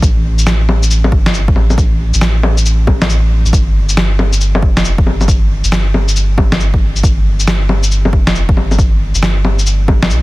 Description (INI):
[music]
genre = future garage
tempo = 137 BPM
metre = 4/4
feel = swing 64% on 16ths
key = unclear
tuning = A4 = 441 Hz
[part]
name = soft dub sub bass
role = bass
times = 0.0-10.2 s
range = F1 to B1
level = -13 LUFS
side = equal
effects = sidechain pumping
[part]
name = electronic kick drum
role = drums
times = 0.0-10.0 s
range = none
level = -13 LUFS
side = equal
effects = overdrive
[part]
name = electronic shaker, snare drum and bongos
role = drums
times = 0.0-10.2 s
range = none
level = -16 LUFS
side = left 1 dB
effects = none
[sound]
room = little or no reverb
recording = dense, heavily limited modern master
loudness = -10 LUFS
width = side -20 dB against mid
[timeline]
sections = 0.0-10.2 A section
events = kick drops out 3.1-3.5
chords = none